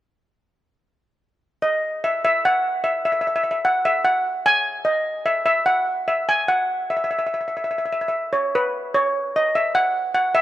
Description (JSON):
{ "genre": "calypso", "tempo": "148 BPM", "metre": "4/4", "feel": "straight", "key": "E major", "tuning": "A4 = 440 Hz", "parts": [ { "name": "steel pan", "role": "solo", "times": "1.6-10.4 s", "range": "B4 to G#5", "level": "-18 LUFS", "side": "equal", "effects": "none" } ], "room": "moderate plate reverb, RT60 3.2 s", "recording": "none", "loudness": "-19 LUFS", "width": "side -13 dB against mid", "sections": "0.6-2.2 A section; 2.2-8.7 B section; 8.7-10.4 C section", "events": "none", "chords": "none" }